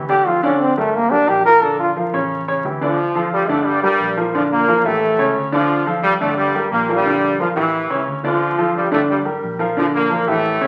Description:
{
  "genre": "latin",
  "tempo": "177 BPM",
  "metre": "4/4",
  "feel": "straight",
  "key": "D harmonic minor",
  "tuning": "A4 = 436 Hz",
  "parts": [
    { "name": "warm upright piano", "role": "accompaniment", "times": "0.0-10.7 s", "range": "C#3 to D5", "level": "-22 LUFS", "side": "equal", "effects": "none" },
    { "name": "vintage muted fingered electric bass", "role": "bass", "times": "0.0-10.7 s", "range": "G1 to D2", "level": "-35 LUFS", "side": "equal", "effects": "none" },
    { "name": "brilliant trombone", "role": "melody", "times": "0.1-1.9 s", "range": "A3 to Bb4", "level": "-17 LUFS", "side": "equal", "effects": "none" },
    { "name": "bright trombone section", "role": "melody", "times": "2.8-10.7 s", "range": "G2 to F4", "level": "-20 LUFS", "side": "equal", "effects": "none" }
  ],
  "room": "moderate large studio reverb, RT60 1.1 s",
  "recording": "very old 78 rpm record, vinyl crackle",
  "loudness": "-17 LUFS",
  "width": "mono",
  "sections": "0.0-3.0 A section; 3.0-10.7 B section",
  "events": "trombone solo 0.0-3.0",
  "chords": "0.3 Dm; 0.9 Gm; 1.6 Bb; 2.3 A7; 3.0 Dm; 3.7 Gm; 4.3 Bb; 5.0 A7; 5.7 Dm; 6.4 Gm; 7.1 Bb; 7.7 A7; 8.4 Dm; 9.1 Gm; 9.8 Bb",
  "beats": "| 0.27 0.61 0.95 1.29 | 1.63 1.97 2.31 2.65 | 2.99 3.33 3.67 4.01 | 4.35 4.68 5.03 5.36 | 5.70 6.04 6.38 6.72 | 7.06 7.40 7.74 8.08 | 8.42 8.76 9.10 9.44 | 9.78 10.11 10.45"
}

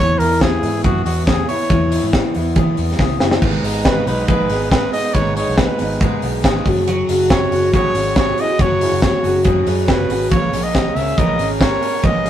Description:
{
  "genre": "jangly indie pop",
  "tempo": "139 BPM",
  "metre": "4/4",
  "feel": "straight",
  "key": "unclear",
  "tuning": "A4 = 440 Hz",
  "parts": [
    { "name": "warm trumpet", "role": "melody", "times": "0.0-12.3 s", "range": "F#4 to E5", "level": "-20 LUFS", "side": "right 1 dB", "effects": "none" },
    { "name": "electric guitar through a small old amp", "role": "arpeggios", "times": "0.0-12.3 s", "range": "G#2 to A#4", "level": "-20 LUFS", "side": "left 1 dB", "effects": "none" },
    { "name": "vintage muted fingered electric bass", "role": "bass", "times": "0.0-12.3 s", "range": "F#1 to E3", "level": "-22 LUFS", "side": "equal", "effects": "none" },
    { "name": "modern studio drum kit", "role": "drums", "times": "0.2-12.3 s", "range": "crash cymbal, hi-hat, kick drum, ride cymbal, snare drum", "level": "-18 LUFS", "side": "equal", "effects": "none" },
    { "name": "picked twelve-string acoustic guitar", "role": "accompaniment", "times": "3.4-12.3 s", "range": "G#2 to A#4", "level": "-25 LUFS", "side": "right 4 dB", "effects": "none" }
  ],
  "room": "moderate studio reverb, RT60 0.6 s",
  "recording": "rough rehearsal-room recording, tube saturation",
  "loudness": "-14 LUFS",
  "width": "side -10 dB against mid",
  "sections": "0.0-12.3 A section",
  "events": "drum fill 3.0-3.4",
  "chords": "0.0 E; 3.4 G#m; 6.7 F#sus2",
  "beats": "0.41 0.84 1.27 | 1.70 2.13 2.56 2.99 | 3.42 3.85 4.29 4.72 | 5.15 5.58 6.01 6.44 | 6.87 7.30 7.73 8.16 | 8.59 9.02 9.45 9.88 | 10.31 10.74 11.18 11.61 | 12.04"
}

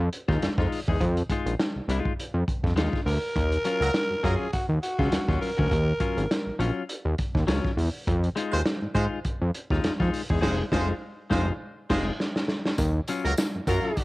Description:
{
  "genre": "funk",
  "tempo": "102 BPM",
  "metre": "4/4",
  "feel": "swing 56% on 16ths",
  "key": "Eb dorian",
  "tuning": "A4 = 441 Hz",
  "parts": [
    { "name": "fat analog bass", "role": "bass", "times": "0.0-13.8 s", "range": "F1 to Ab2", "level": "-25 LUFS", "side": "equal", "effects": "none" },
    { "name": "vintage drum kit", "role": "drums", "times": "0.1-14.0 s", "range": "crash cymbal, hi-hat, kick drum, snare drum", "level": "-28 LUFS", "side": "equal", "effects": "none" },
    { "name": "clean electric guitar", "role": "accompaniment", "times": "0.3-13.9 s", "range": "Gb3 to Ab4", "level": "-31 LUFS", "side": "left 4 dB", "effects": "cassette tape" },
    { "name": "growling tenor saxophone", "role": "melody", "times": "3.1-6.6 s", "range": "Gb4 to Bb4", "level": "-28 LUFS", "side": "equal", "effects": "cassette tape" },
    { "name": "warm horn section", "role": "second line", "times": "3.8-4.3, 8.5-14.0 s", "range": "Gb3 to C5", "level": "-31 LUFS", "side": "right 1 dB", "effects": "cassette tape" },
    { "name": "tambourine", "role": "percussion", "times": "12.8-14.0 s", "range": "none", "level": "-42 LUFS", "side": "left 2 dB", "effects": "none" }
  ],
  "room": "light reverb",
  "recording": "home recording on cassette",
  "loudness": "-24 LUFS",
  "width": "side -20 dB against mid",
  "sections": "0.0-12.8 A section; 12.8-14.0 B section",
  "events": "band accent 10.4-12.8; drum fill 11.6-12.8",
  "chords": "0.0 Fm7; 3.4 Ebm9; 8.1 Fm7; 12.8 Ebm9",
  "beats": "0.42 | 1.01 1.60 2.18 2.77 | 3.36 3.95 4.54 5.12 | 5.71 6.30 6.89 7.48 | 8.07 8.66 9.25 9.84 | 10.43 11.02 11.61 12.20 | 12.79 13.38 13.97"
}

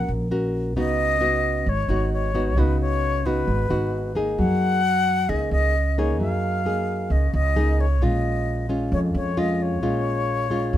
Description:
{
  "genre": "bossa nova",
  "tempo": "132 BPM",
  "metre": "4/4",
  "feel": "straight",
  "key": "unclear",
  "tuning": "A4 = 441 Hz",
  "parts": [
    { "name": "concert flute", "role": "melody", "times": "0.0-10.8 s", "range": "Cb5 to Gb5", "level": "-25 LUFS", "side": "left 1 dB", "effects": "none" },
    { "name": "nylon-string guitar", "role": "accompaniment", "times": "0.0-10.8 s", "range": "F2 to Bb4", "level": "-24 LUFS", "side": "left 1 dB", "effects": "none" },
    { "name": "upright bass", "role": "bass", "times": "0.0-10.8 s", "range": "Ab1 to Gb2", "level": "-24 LUFS", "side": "right 1 dB", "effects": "none" }
  ],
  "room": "light reverb",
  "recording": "minimal, uncompressed stereo recording",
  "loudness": "-20 LUFS",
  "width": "side -12 dB against mid",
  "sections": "0.0-10.8 A section",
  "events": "none",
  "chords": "0.0 Ebm7 (rootless); 0.8 Db9sus4; 4.4 Gb69; 8.0 Bbm7",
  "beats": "0.31 | 0.76 1.21 1.67 2.12 | 2.57 3.02 3.48 3.93 | 4.38 4.84 5.29 5.74 | 6.20 6.65 7.10 7.56 | 8.01 8.46 8.92 9.37 | 9.82 10.28 10.73"
}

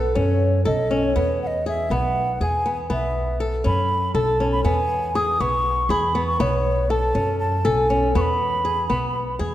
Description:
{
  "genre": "contemporary instrumental, chamber music in an uneven meter",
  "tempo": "240 BPM (eighths)",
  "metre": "7/8",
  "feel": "straight",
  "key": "B mixolydian",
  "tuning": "A4 = 441 Hz",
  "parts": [
    { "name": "mellow hollow wooden flute", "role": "melody", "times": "0.0-9.4 s", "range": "B4 to D#6", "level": "-23 LUFS", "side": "right 1 dB", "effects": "none" },
    { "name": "flamenco guitar", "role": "arpeggios", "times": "0.0-9.5 s", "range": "B3 to A4", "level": "-24 LUFS", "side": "left 1 dB", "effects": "none" },
    { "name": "upright bass", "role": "bass", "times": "0.0-9.5 s", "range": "B1 to F#2", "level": "-24 LUFS", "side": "equal", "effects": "none" }
  ],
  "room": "wet concert hall reverb, RT60 2.1 s",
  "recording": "none",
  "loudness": "-19 LUFS",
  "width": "side -13 dB against mid",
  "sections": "0.0-9.5 A section",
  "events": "none",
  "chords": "0.0 Bsus2; 1.2 E; 2.9 B9sus4; 4.7 E6; 6.4 Bsus2; 8.1 E",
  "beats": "0.16 0.41 0.66 0.91 | 1.16 1.41 1.66 1.91 2.16 2.41 2.66 | 2.90 3.15 3.40 3.65 3.90 4.15 4.40 | 4.65 4.90 5.15 5.40 5.65 5.90 6.15 | 6.40 6.65 6.90 7.15 7.40 7.64 7.89 | 8.14 8.39 8.64 8.89 9.14 9.39"
}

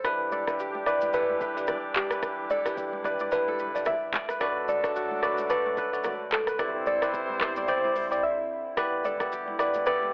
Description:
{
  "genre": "afrobeats",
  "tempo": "110 BPM",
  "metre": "4/4",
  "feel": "swing 58% on 16ths",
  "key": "E minor",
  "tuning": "A4 = 440 Hz",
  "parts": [
    { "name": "warm horn section", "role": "second line", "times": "0.0-10.1 s", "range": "E3 to D5", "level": "-35 LUFS", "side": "equal", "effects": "analog delay" },
    { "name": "bell-like tine electric piano", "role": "accompaniment", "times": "0.0-10.1 s", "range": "G3 to D5", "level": "-30 LUFS", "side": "equal", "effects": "medium stereo tremolo" },
    { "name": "hollow soft pad", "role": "sustained chords", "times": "0.0-10.1 s", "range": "D3 to F#4", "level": "-43 LUFS", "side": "equal", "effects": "none" },
    { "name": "kora", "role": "riff", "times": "0.0-10.1 s", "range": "F#4 to D5", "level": "-34 LUFS", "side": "equal", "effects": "none" },
    { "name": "warm sub bass", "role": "bass", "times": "0.0-10.1 s", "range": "D1 to E2", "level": "-57 LUFS", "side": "equal", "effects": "none" },
    { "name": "afro-pop drum kit", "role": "drums", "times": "0.0-10.0 s", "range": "handclaps, hi-hat, kick drum, rim click, shaker", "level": "-31 LUFS", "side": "equal", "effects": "none" },
    { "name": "soft round pluck", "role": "melody", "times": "0.3-10.1 s", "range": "G4 to E5", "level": "-29 LUFS", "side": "equal", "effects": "chorus" },
    { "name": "congas", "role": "percussion", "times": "0.3-10.1 s", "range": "none", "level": "-46 LUFS", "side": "equal", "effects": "none" }
  ],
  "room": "light reverb",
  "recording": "dry, gritty hardware recording, cassette tape, telephone sound",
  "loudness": "-25 LUFS",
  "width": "side -29 dB against mid",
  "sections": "0.0-10.1 A section",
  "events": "break 8.2-8.8",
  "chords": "0.0 Em7; 4.4 D; 6.6 Cadd9; 8.8 Em7",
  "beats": "| 0.04 0.59 1.14 1.68 | 2.23 2.77 3.32 3.86 | 4.41 4.95 5.50 6.04 | 6.59 7.14 7.68 8.23 | 8.77 9.32 9.86"
}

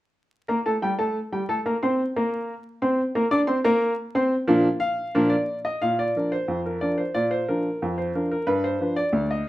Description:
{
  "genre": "ragtime piano",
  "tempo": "90 BPM",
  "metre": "2/4",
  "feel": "straight",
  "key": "Bb major",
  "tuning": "A4 = 436 Hz",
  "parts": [
    { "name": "clear upright piano", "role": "solo", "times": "0.5-9.5 s", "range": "D2 to D6", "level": "-21 LUFS", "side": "equal", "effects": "none" }
  ],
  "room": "wet club reverb, RT60 0.8 s",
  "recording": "vinyl crackle",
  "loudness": "-22 LUFS",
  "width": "side -16 dB against mid",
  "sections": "0.5-5.8 A section; 5.8-9.5 B section",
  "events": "none",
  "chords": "0.5 Bb; 8.5 G7",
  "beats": "| 0.49 1.16 | 1.83 2.49 | 3.15 3.81 | 4.48 5.14 | 5.82 6.48 | 7.15 7.81 | 8.48 9.14"
}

